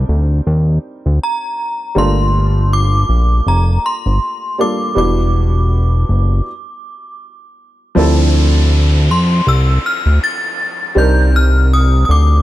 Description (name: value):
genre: contemporary R&B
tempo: 80 BPM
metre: 4/4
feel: swing 58% on 16ths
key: unclear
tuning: A4 = 441 Hz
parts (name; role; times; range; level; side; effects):
- felt-muted upright piano; accompaniment; 0.0-12.4 s; F3 to Bb4; -20 LUFS; right 1 dB; none
- fat analog bass; bass; 0.0-12.4 s; E1 to F2; -11 LUFS; equal; none
- synth chime; melody; 1.2-12.4 s; Bb5 to A6; -19 LUFS; left 1 dB; ensemble chorus, tremolo
- downlifter; sound effects; 8.0-12.4 s; none; -25 LUFS; equal; none
room: digital ambience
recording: dark, warm production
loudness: -12 LUFS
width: side -15 dB against mid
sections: 0.0-8.0 A section; 8.0-12.4 B section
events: stop 6.5-8.0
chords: 0.0 Cm9; 2.0 Gm9; 5.0 Em9; 8.0 Dm9; 11.0 Cm9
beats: 0.47 1.22 | 1.97 2.71 3.46 4.21 | 4.96 5.71 6.46 7.21 | 7.96 8.71 9.46 10.21 | 10.96 11.71